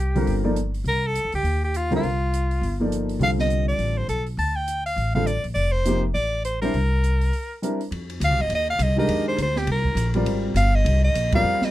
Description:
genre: modal jazz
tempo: 204 BPM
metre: 4/4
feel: swing 59% on 8ths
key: C dorian, F dorian from 7.9 s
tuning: A4 = 441 Hz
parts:
  - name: breathy soprano saxophone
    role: melody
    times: 0.0-11.7 s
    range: F4 to A5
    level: -25 LUFS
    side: equal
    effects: none
  - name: upright bass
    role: bass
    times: 0.0-11.6 s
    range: F1 to F2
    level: -23 LUFS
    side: equal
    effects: none
  - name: warm grand piano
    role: accompaniment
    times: 0.2-11.7 s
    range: C3 to D5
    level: -24 LUFS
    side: equal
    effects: none
  - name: open jazz drum kit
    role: drums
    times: 0.2-11.7 s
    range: hi-hat, kick drum, ride cymbal, snare drum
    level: -33 LUFS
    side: right 1 dB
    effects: none
room: little or no reverb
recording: close, detailed microphones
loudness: -20 LUFS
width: side -15 dB against mid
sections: 0.0-7.9 A section; 7.9-11.7 B section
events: break 7.3-7.9; band accent 11.3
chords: 0.0 Cm7; 3.2 Dm; 6.7 C7; 7.9 Fm11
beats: 0.27 0.56 | 0.86 1.15 1.44 1.74 | 2.03 2.33 2.62 2.91 | 3.21 3.50 3.79 4.09 | 4.38 4.68 4.97 5.26 | 5.56 5.85 6.15 6.44 | 6.73 7.03 7.32 7.62 | 7.91 8.20 8.50 8.79 | 9.09 9.38 9.67 9.97 | 10.26 10.55 10.85 11.14 | 11.44

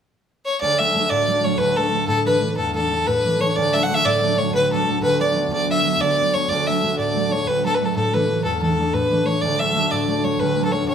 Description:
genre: celtic folk, Celtic slip jig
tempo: 123 BPM (dotted quarters)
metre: 9/8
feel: straight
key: D major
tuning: A4 = 440 Hz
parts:
  - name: clear fiddle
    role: melody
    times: 0.5-10.9 s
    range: A4 to F#5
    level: -19 LUFS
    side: equal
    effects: none
  - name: concert harp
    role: accompaniment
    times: 0.6-10.9 s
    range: D2 to D4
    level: -21 LUFS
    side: right 1 dB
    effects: none
room: wet stone room reverb, RT60 0.9 s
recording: band playing live in one room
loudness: -17 LUFS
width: side -8 dB against mid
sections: 0.6-10.9 A section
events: none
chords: 0.0 N.C.; 0.6 D; 2.1 Asus4; 3.6 D; 5.0 Bm/D; 8.0 Asus4; 9.4 D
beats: 0.13 | 0.62 1.11 1.60 | 2.09 2.58 3.07 | 3.56 4.05 4.54 | 5.03 5.51 6.00 | 6.49 6.98 7.47 | 7.95 8.44 8.93 | 9.41 9.90 10.39 | 10.87

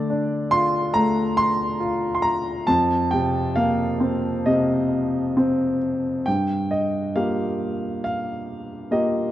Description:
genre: classical, lyrical solo piano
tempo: 65-70 BPM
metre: 4/4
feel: rubato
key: G minor from 6.3 s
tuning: A4 = 440 Hz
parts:
  - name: warm grand piano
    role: solo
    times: 0.0-9.3 s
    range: F2 to C6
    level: -20 LUFS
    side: equal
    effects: none
room: moderate concert hall reverb, RT60 1.9 s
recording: dark, warm production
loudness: -20 LUFS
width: side -13 dB against mid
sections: 0.0-6.3 A section; 6.3-9.3 B section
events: none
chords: 0.0 Dm7; 2.7 F7sus4; 6.3 Gm7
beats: 0.10 0.95 1.81 | 2.67 3.56 4.45 5.36 | 6.26 7.16 8.04 8.91

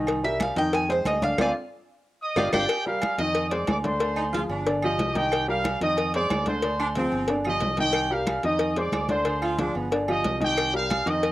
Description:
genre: latin, salsa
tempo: 183 BPM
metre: 4/4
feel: straight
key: C minor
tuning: A4 = 437 Hz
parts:
  - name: warm upright piano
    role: accompaniment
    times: 0.0-11.3 s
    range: D3 to Eb5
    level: -28 LUFS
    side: equal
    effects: plate reverb
  - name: fingered electric bass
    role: bass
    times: 0.0-11.3 s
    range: G1 to F2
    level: -32 LUFS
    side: equal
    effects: none
  - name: agogo bells and timbales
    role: percussion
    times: 0.1-11.3 s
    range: none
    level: -33 LUFS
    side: right 4 dB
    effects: none
  - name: claves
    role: percussion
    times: 0.1-11.1 s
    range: none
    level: -38 LUFS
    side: right 3 dB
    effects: none
  - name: congas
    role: percussion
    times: 0.1-11.3 s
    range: none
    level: -32 LUFS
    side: left 1 dB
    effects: none
  - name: cowbell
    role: percussion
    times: 0.1-11.3 s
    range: none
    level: -30 LUFS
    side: left 3 dB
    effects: none
  - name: Cuban tres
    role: melody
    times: 0.2-2.6 s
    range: C5 to Ab5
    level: -26 LUFS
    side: right 1 dB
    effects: cassette tape, plate reverb
  - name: bright trumpet section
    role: melody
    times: 2.2-11.3 s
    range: G4 to Eb6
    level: -27 LUFS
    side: equal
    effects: cassette tape, plate reverb
  - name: bright saxophone section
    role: second line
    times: 4.2-4.7, 6.8-7.3, 9.4-10.0 s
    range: B3 to F4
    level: -29 LUFS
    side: right 1 dB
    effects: plate reverb
room: moderate small room reverb, RT60 0.5 s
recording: home recording on cassette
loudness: -22 LUFS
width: side -16 dB against mid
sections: 0.0-2.7 A section; 2.7-11.3 B section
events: Cuban tres solo 0.0-2.7; band accent 1.4-2.7; drum fill 1.7-2.7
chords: 0.1 Cm7; 0.7 Fm7; 1.4 Dm7; 2.0 G5; 2.7 F9sus4; 3.4 Fm7; 4.0 Dm7b5; 4.7 G5; 5.3 Cm7; 6.0 Fm7; 6.6 Dm7b5; 7.3 G5; 7.9 Cm7; 8.6 Fm7; 9.3 Dm7b5; 9.9 G5; 10.6 Cm7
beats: | 0.07 0.40 0.73 1.06 | 1.39 1.71 2.04 2.37 | 2.70 3.03 3.35 3.68 | 4.01 4.34 4.67 4.99 | 5.32 5.65 5.98 6.31 | 6.63 6.96 7.29 7.62 | 7.95 8.28 8.60 8.93 | 9.26 9.59 9.92 10.25 | 10.57 10.90 11.23

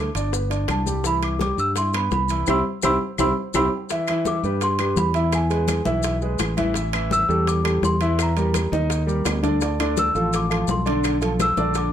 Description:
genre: Afro-Cuban jazz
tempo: 168 BPM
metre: 4/4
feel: straight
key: C major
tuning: A4 = 441 Hz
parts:
  - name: celesta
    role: melody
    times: 0.0-11.9 s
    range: G#5 to E6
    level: -24 LUFS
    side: right 1 dB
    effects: none
  - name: warm grand piano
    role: accompaniment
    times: 0.0-11.9 s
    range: D3 to E5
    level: -24 LUFS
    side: equal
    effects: none
  - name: fingered electric bass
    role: bass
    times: 0.0-11.9 s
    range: G1 to G2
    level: -24 LUFS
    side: equal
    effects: none
  - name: timbales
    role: percussion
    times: 0.1-11.9 s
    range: none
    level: -31 LUFS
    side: right 8 dB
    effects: none
  - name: maracas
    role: percussion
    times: 0.2-11.9 s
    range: none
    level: -34 LUFS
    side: left 8 dB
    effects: none
  - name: bongos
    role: percussion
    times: 0.3-11.9 s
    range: none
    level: -32 LUFS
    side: left 7 dB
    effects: none
  - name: congas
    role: percussion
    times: 0.3-11.9 s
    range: none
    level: -31 LUFS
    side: left 4 dB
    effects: none
  - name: claves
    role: percussion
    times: 0.7-11.6 s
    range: none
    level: -33 LUFS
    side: left 8 dB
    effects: none
room: moderate studio reverb, RT60 0.6 s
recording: none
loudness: -19 LUFS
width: side -10 dB against mid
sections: 0.0-3.9 A section; 3.9-11.9 B section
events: band accent 2.5-3.9; drum fill 2.8-3.9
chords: 0.3 Gadd9; 1.0 Cmaj7; 5.3 E; 6.8 Am7; 8.2 Edim; 8.9 Eb; 9.6 Dm9; 11.0 Bm7b5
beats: 0.33 0.69 | 1.05 1.40 1.76 2.12 | 2.48 2.83 3.19 3.55 | 3.90 4.26 4.62 4.97 | 5.33 5.69 6.04 6.40 | 6.76 7.11 7.47 7.83 | 8.18 8.54 8.90 9.25 | 9.61 9.97 10.32 10.68 | 11.04 11.39 11.75

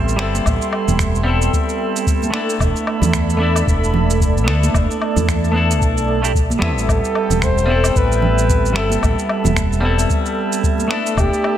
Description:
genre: sunset chillout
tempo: 112 BPM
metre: 4/4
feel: swing 57% on 16ths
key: unclear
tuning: A4 = 443 Hz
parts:
  - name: semi-hollow electric guitar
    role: accompaniment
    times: 0.0-11.6 s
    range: G3 to B4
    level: -21 LUFS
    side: moving between left 3 dB and right 5 dB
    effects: auto-pan, tape echo
  - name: lush unison pad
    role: sustained chords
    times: 0.0-11.6 s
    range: A4 to C6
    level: -24 LUFS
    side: right 1 dB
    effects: chorus
  - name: mellow fretless electric bass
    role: bass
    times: 0.0-11.3 s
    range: E1 to E2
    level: -18 LUFS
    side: equal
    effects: none
  - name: electronic shaker, finger snaps and woodblock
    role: drums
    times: 0.1-11.6 s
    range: none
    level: -26 LUFS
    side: equal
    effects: overdrive
  - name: congas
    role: percussion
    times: 0.3-10.9 s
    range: none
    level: -25 LUFS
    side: right 4 dB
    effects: none
  - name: electronic kick drum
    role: drums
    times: 0.5-11.3 s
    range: none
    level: -20 LUFS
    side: equal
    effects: none
  - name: warm flugelhorn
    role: melody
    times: 6.9-11.6 s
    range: G4 to C5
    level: -22 LUFS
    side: left 1 dB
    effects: digital delay
room: light reverb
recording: none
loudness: -14 LUFS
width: side -11 dB against mid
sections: 0.0-11.6 A section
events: none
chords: 0.0 E7sus4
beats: | 0.45 0.99 1.53 2.06 | 2.60 3.13 3.67 4.20 | 4.74 5.28 5.81 6.35 | 6.88 7.42 7.95 8.49 | 9.03 9.56 10.10 10.63 | 11.17

